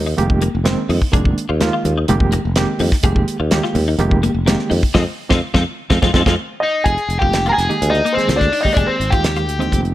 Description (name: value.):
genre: electric jazz fusion.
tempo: 126 BPM.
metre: 4/4.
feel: straight.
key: F dorian.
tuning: A4 = 439 Hz.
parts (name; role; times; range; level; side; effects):
sustaining fretless electric bass; bass; 0.0-9.9 s; F1 to F2; -19 LUFS; equal; none.
clean electric guitar; stabs; 0.1-9.8 s; Bb3 to Ab4; -24 LUFS; left 5 dB; ensemble chorus.
overdriven reed electric piano; accompaniment; 0.2-9.9 s; Eb3 to Ab4; -21 LUFS; right 3 dB; fast tremolo.
damped 70s drum kit; drums; 0.2-9.9 s; hi-hat, kick drum, snare drum; -19 LUFS; equal; none.
congas; percussion; 0.2-6.4 s; none; -24 LUFS; left 3 dB; none.
dark baby grand piano; melody; 6.6-9.8 s; C5 to Bb5; -19 LUFS; left 1 dB; none.
biting overdriven guitar; second line; 6.6-9.8 s; C4 to Bb4; -21 LUFS; left 2 dB; none.
room: light reverb, studio reverb.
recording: none.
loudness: -14 LUFS.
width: side -14 dB against mid.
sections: 0.0-6.9 A section; 6.9-9.9 B section.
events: band accent 4.9-6.9; reed electric piano fill 5.9-6.9; drum fill 6.4-6.9.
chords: 0.0 Fm11.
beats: 0.18 0.66 | 1.13 1.61 2.08 2.56 | 3.04 3.52 3.99 4.47 | 4.95 5.42 5.90 6.38 | 6.86 7.33 7.81 8.29 | 8.77 9.25 9.73.